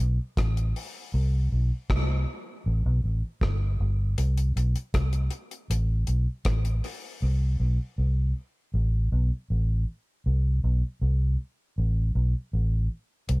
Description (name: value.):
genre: dub reggae.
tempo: 79 BPM.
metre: 4/4.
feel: straight.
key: unclear.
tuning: A4 = 440 Hz.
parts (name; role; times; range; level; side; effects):
vintage muted fingered electric bass; bass; 0.0-13.4 s; G1 to C2; -23 LUFS; equal; none.
deep reggae drum kit; drums; 0.4-7.0, 13.3-13.4 s; hi-hat, kick drum, rim click; -31 LUFS; equal; none.
room: little or no reverb.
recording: none.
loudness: -24 LUFS.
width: side -24 dB against mid.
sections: 0.0-13.4 A section.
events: hi-hats muted 1.1-4.2; part muted 7.2-13.3.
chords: none.